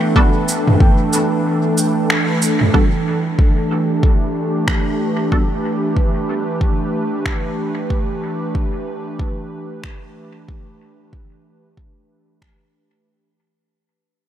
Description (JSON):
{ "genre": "ambient dub", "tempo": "93 BPM", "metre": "4/4", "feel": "swing 60% on 16ths", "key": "E minor", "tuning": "A4 = 440 Hz", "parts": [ { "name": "airy breathy pad", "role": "sustained chords", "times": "0.0-13.1 s", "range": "E3 to B4", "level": "-19 LUFS", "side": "right 1 dB", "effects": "chorus, vintage 12-bit sampler grit" }, { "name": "concert harp", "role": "arpeggios", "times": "0.0-2.4 s", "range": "B3 to G5", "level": "-29 LUFS", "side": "left 1 dB", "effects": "dub echo" }, { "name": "filtered dub chord stab", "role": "stabs", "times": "0.2-5.5 s", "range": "G3 to A4", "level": "-24 LUFS", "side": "right 1 dB", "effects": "phaser, ensemble chorus, vintage 12-bit sampler grit, dub echo" }, { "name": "electronic kick drum", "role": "drums", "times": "0.2-12.6 s", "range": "none", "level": "-16 LUFS", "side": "equal", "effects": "none" }, { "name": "organic electronic drum kit", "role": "drums", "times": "0.5-12.6 s", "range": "cabasa, finger snaps, toms", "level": "-20 LUFS", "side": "right 1 dB", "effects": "overdrive, dub echo" } ], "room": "light reverb, digital ambience", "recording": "none", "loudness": "-15 LUFS", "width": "side -11 dB against mid", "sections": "0.0-2.7 A section; 2.7-13.1 B section", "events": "break 1.5-2.7; band accent 2.1-2.4; fade-out 2.7-13.1", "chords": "0.0 Em11", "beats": "| 0.16 0.81 1.45 2.10 | 2.74 3.39 4.03 4.68 | 5.32 5.97 6.61 7.26 | 7.90 8.55 9.19 9.84 | 10.48 11.13 11.77 12.42" }